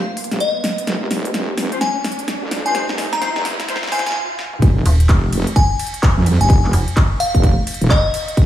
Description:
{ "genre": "bass house", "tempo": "128 BPM", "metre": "4/4", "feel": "swing 62% on 16ths", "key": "F minor", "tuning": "A4 = 440 Hz", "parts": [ { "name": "glassy synth bell", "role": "melody", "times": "0.0-8.5 s", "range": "Eb5 to Bb5", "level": "-22 LUFS", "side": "left 1 dB", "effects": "chorus, tape echo" }, { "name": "wobble bass", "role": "bass", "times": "0.0-8.5 s", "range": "Eb1 to F2", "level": "-19 LUFS", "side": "equal", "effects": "chorus, sidechain pumping, high-pass filter" }, { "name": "riser", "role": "sound effects", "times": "0.0-4.2 s", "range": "none", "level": "-28 LUFS", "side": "right 1 dB", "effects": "none" }, { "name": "big-room dance drum kit", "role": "drums", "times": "0.2-8.5 s", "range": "handclaps, hi-hat, ride cymbal, snare drum, toms", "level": "-24 LUFS", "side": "equal", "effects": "overdrive, studio reverb" }, { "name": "dark horn section", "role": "stabs", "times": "1.7-4.0 s", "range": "F3 to C5", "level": "-28 LUFS", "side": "left 2 dB", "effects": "sidechain pumping, low-pass filter, tape echo" }, { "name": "electronic kick drum", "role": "drums", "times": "4.6-8.5 s", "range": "none", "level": "-14 LUFS", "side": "equal", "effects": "studio reverb" }, { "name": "metallic FM bass", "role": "bass", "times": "4.9-6.9 s", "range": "Eb1 to F1", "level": "-13 LUFS", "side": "equal", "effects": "tube saturation, sidechain pumping" } ], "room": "light reverb, digital ambience", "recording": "high-pass filter, studio reverb", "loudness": "-15 LUFS", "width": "side -12 dB against mid", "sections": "0.0-4.6 A section; 4.6-8.5 B section", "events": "build-up 0.0-4.6; drum fill 0.0-4.2, 4.4; riser 0.0-4.2; filter sweep 0.0-4.6; break 4.2-4.6; drop 4.6-8.5", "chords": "0.0 F5; 4.6 N.C.", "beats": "0.40 | 0.87 1.34 1.81 2.28 | 2.75 3.22 3.69 4.15 | 4.62 5.09 5.56 6.03 | 6.50 6.97 7.43 7.90 | 8.37" }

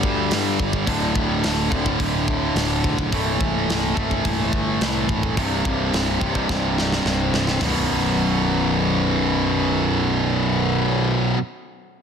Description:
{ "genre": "heavy metal", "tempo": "107 BPM", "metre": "4/4", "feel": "straight", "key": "B phrygian", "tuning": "A4 = 440 Hz", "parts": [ { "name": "high-gain distorted guitar", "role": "riff", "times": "0.0-11.4 s", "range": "B1 to A3", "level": "-20 LUFS", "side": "equal", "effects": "distortion" }, { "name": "fuzz picked electric bass", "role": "bass", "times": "0.0-11.3 s", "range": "B0 to G2", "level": "-26 LUFS", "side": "equal", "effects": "overdrive" }, { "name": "tight metal drum kit", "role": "drums", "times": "0.0-7.7 s", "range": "hi-hat, kick drum, snare drum, toms", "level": "-26 LUFS", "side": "equal", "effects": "soft clipping on kick" } ], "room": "light reverb", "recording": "dense, heavily limited modern master", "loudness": "-18 LUFS", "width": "side -7 dB against mid", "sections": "0.0-7.6 A section; 7.6-9.9 B section", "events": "drum fill 6.5-7.6", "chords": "0.0 G5; 0.9 D5; 3.1 Am/C; 5.4 C5; 7.6 B5", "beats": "0.31 | 0.87 1.43 1.99 2.55 | 3.12 3.68 4.24 4.80 | 5.36 5.92 6.48 7.05 | 7.61 8.17 8.73 9.29" }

